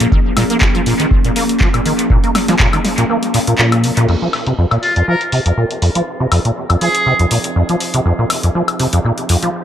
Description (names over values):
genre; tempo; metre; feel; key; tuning
acid house; 121 BPM; 4/4; swing 54% on 16ths; F minor; A4 = 440 Hz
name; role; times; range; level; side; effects
warbly tape-like pad; sustained chords; 0.0-9.6 s; F3 to Ab4; -21 LUFS; equal; chorus, built-in reverb, vintage 12-bit sampler grit, sidechain pumping
acid bass, saw; riff; 0.0-9.5 s; F2 to Bb3; -15 LUFS; equal; ensemble chorus, dub echo
punchy analog drum machine; drums; 0.0-9.5 s; crash cymbal, handclaps, hi-hat, snare drum, woodblock; -19 LUFS; left 1 dB; low-pass filter on hats, low-pass filter on snare, low-pass filter on perc, low-pass filter on cymbals, dub echo
electronic kick drum; drums; 0.1-2.7 s; none; -15 LUFS; equal; none
trumpet with metal mute; melody; 4.8-7.2 s; F4 to Bb4; -19 LUFS; right 1 dB; dub echo
room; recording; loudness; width
moderate spring reverb, RT60 1.7 s, digital ambience; echo-heavy mix; -12 LUFS; side -10 dB against mid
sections
0.0-4.1 A section; 4.1-9.6 B section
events
kick drops out 3.1-4.1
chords
0.0 Bbm7; 4.1 Fm7